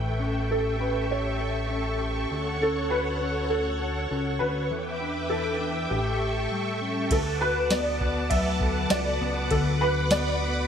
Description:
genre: dream pop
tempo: 100 BPM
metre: 4/4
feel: straight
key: D major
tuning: A4 = 440 Hz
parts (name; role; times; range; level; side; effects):
- felt-muted upright piano; melody; 0.0-10.7 s; G4 to E5; -28 LUFS; equal; ensemble chorus, ping-pong delay
- string machine, violas; sustained chords; 0.0-10.7 s; A4 to D6; -30 LUFS; equal; ensemble chorus
- mellow electric guitar; arpeggios; 0.0-10.7 s; A2 to A4; -31 LUFS; left 3 dB; ensemble chorus, ping-pong delay
- chorused synth bass; bass; 0.0-10.7 s; A1 to E2; -31 LUFS; equal; none
- soft vintage rhythm box; drums; 7.1-10.2 s; kick drum, ride cymbal, snare drum, tambourine; -29 LUFS; equal; overdrive
room: moderate plate reverb, RT60 2.1 s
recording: bright 1980s-style digital production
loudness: -24 LUFS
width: side -8 dB against mid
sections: 0.0-7.1 A section; 7.1-10.7 B section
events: none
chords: 0.0 A7; 2.3 Dmaj7; 4.7 Em7; 5.9 A7; 7.1 D6

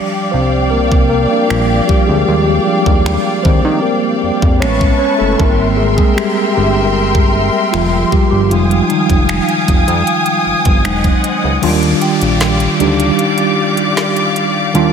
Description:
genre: contemporary R&B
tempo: 77 BPM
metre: 4/4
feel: straight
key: Eb major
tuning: A4 = 438 Hz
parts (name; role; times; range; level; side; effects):
- mellow tine electric piano; accompaniment; 0.0-14.9 s; Eb3 to D5; -14 LUFS; right 1 dB; medium stereo tremolo
- rich studio string section; sustained chords; 0.0-14.9 s; G4 to Eb6; -17 LUFS; left 2 dB; none
- fat analog bass; bass; 0.3-14.9 s; E1 to Eb3; -16 LUFS; equal; none
- trap drum kit; drums; 0.9-14.9 s; crash cymbal, finger snaps, hi-hat, kick drum, snare drum; -16 LUFS; equal; none
- swell and downlifter; sound effects; 10.2-14.9 s; none; -26 LUFS; equal; none
- glassy synth bell; texture; 12.0-12.8 s; G5; -27 LUFS; right 3 dB; chorus, phaser, tape echo
room: moderate lush hall reverb, RT60 2.8 s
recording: dreamy mix soaked in reverb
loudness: -11 LUFS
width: side -7 dB against mid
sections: 0.0-11.6 A section; 11.6-14.9 B section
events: tine electric piano solo 0.0-11.6; swell 10.2-11.6; kick muted 11.6-14.9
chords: 0.0 Ebmaj9; 4.6 Amaj9; 5.4 Abmaj9; 8.5 Fm9; 10.9 Emaj9; 11.6 Ebmaj9

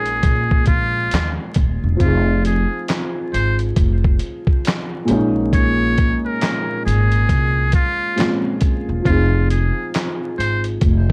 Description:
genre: lo-fi hip hop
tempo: 68 BPM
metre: 4/4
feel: swing 61% on 16ths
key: F minor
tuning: A4 = 440 Hz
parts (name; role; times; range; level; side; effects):
- trumpet with metal mute; melody; 0.0-10.6 s; F4 to Db5; -25 LUFS; equal; low-pass filter
- dark upright piano; accompaniment; 0.0-11.1 s; Bb2 to Ab4; -25 LUFS; equal; low-pass filter
- upright bass; bass; 0.0-11.1 s; Eb1 to Bb2; -21 LUFS; equal; tube saturation
- dusty soul sampler-style drum kit; drums; 0.1-11.1 s; handclaps, hi-hat, kick drum, snare drum; -22 LUFS; equal; none
room: little or no reverb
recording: dry, gritty hardware recording, vinyl crackle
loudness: -18 LUFS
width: mono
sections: 0.0-11.1 A section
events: none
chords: 0.0 Bbm7; 2.0 Fm7; 5.1 Bbm11; 9.1 Fm7

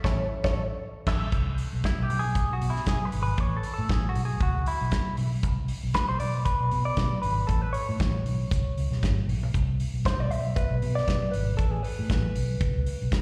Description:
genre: disco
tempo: 117 BPM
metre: 4/4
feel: swing 56% on 16ths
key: unclear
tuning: A4 = 439 Hz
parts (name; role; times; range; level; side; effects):
- direct-recorded clean electric guitar; accompaniment; 0.0-13.1 s; C#4 to E5; -34 LUFS; equal; wah, spring reverb, slapback echo
- vintage muted fingered electric bass; bass; 0.0-13.1 s; G#1 to B2; -30 LUFS; equal; none
- warm soul drum kit; drums; 0.0-13.2 s; crash cymbal, hi-hat, kick drum, snare drum; -32 LUFS; equal; none
room: little or no reverb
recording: live gig heard through the venue's PA, recital hall reverb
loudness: -27 LUFS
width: mono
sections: 0.0-1.3 A section; 1.3-13.2 B section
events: band accent 0.0-1.3; clean electric guitar solo 1.3-13.2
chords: 0.0 A; 1.3 Cmaj7; 2.1 G#m7; 3.4 Asus2; 4.4 C#m7; 5.4 N.C.; 6.2 G#dim; 7.5 Aadd9; 8.5 C#5; 9.5 Bm; 10.3 G#dim; 11.6 Asus2; 12.6 Bsus2

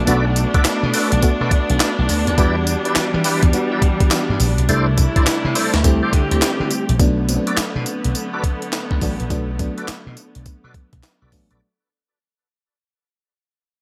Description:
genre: R&B, new jack swing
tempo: 104 BPM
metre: 4/4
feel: swing 64% on 16ths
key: unclear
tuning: A4 = 440 Hz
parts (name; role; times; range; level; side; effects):
- FM electric piano with tremolo; accompaniment; 0.0-11.6 s; F#3 to F#4; -26 LUFS; equal; none
- warm studio string section; sustained chords; 0.0-11.6 s; C3 to G4; -26 LUFS; equal; none
- slap bass; bass; 0.0-11.6 s; A1 to E3; -22 LUFS; equal; none
- tonewheel organ; stabs; 0.1-11.6 s; E4 to D5; -27 LUFS; equal; chorus vibrato, slow rotary speaker, tape echo
- breakbeat sampler-style drum kit; drums; 0.1-11.6 s; handclaps, hi-hat, kick drum, snare drum, tambourine; -21 LUFS; equal; gated reverb
room: little or no reverb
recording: none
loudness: -18 LUFS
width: mono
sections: 0.0-7.0 A section; 7.0-11.6 B section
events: fade-out 7.0-11.6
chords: 0.0 Bm7; 2.4 Em7; 4.7 C69; 5.8 D7sus4; 7.0 Bm7

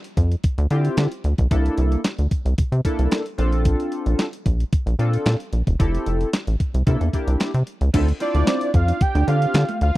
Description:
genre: early-eighties boogie funk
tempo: 112 BPM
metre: 4/4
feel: straight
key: D minor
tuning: A4 = 439 Hz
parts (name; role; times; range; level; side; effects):
- clean 12-bit digital drum machine; drums; 0.0-9.9 s; crash cymbal, handclaps, hi-hat, kick drum, snare drum; -21 LUFS; equal; none
- rubbery square bass; bass; 0.2-9.9 s; E1 to D3; -19 LUFS; equal; none
- chorused polysynth; accompaniment; 0.7-9.7 s; Bb3 to C5; -26 LUFS; left 1 dB; none
- mellow electric guitar; riff; 7.9-9.8 s; A3 to D4; -28 LUFS; right 4 dB; ensemble chorus
- fat analog lead; melody; 8.2-10.0 s; D5 to G5; -23 LUFS; right 2 dB; chorus, phaser
room: digital ambience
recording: dry, close 1970s-style studio recording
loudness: -18 LUFS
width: side -17 dB against mid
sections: 0.0-7.9 A section; 7.9-10.0 B section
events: none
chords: 0.0 Dm7; 1.5 C13; 3.4 Bbmaj7; 5.8 Fmaj7; 6.9 C13; 7.9 Dm7

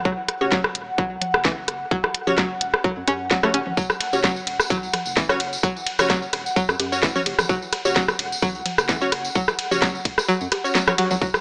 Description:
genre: minimal techno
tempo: 129 BPM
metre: 4/4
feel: swing 54% on 16ths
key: F# minor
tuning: A4 = 440 Hz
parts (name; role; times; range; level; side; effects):
- pulsing gated texture; texture; 0.0-11.2 s; F#5; -33 LUFS; equal; chorus, built-in reverb, sidechain pumping
- string-like resonator pluck; riff; 0.1-11.3 s; E3 to C#4; -27 LUFS; equal; chorus, sidechain pumping, analog delay
- rubbery square bass; bass; 0.1-11.3 s; E1 to F#2; -40 LUFS; equal; sidechain pumping
- electronic kick drum; drums; 0.1-11.3 s; none; -26 LUFS; equal; none
- garage drum kit; drums; 0.3-11.1 s; hi-hat, ride cymbal, snare drum; -27 LUFS; equal; none
- electronic rim click, bongos and congas; percussion; 0.3-11.4 s; none; -26 LUFS; equal; analog delay
- wavetable chord stab; stabs; 0.4-10.9 s; C#4 to C#5; -28 LUFS; equal; analog delay
- tambourine; percussion; 3.8-11.4 s; none; -33 LUFS; equal; none
room: light reverb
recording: dry, gritty hardware recording, small speaker sound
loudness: -22 LUFS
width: mono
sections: 0.0-11.2 A section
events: drop 0.0-11.2; kick drops out 10.3-11.2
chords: 0.0 F#5

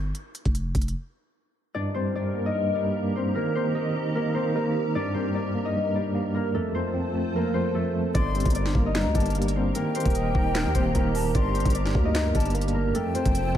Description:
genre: hip hop, trap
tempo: 150 BPM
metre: 4/4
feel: half-time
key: G minor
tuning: A4 = 440 Hz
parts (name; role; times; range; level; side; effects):
- growling 808-style bass; bass; 0.0-0.9, 8.1-13.6 s; Eb1 to Eb2; -27 LUFS; equal; none
- trap drum kit; drums; 0.1-0.9, 8.1-13.6 s; handclaps, hi-hat, kick drum, snare drum; -26 LUFS; equal; none
- concert harp; melody; 1.7-13.6 s; A3 to Eb5; -28 LUFS; left 1 dB; none
- hollow soft pad; sustained chords; 1.9-13.6 s; F4 to Bb5; -35 LUFS; right 1 dB; ensemble chorus
- tine electric piano; accompaniment; 1.8-13.6 s; F2 to Eb5; -28 LUFS; right 1 dB; medium tremolo
- breathy hollow jazz flute; second line; 8.1-13.6 s; G5 to C6; -34 LUFS; left 5 dB; analog delay
room: moderate church reverb, RT60 3.0 s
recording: dreamy mix soaked in reverb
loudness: -23 LUFS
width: side -10 dB against mid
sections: 0.0-1.7 A section; 1.7-13.6 B section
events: break 0.0-1.7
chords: 0.1 N.C.; 1.7 Gm; 3.3 Eb; 4.9 Gm; 6.5 F; 8.1 Gm; 9.7 Eb; 11.3 Gm; 12.9 F

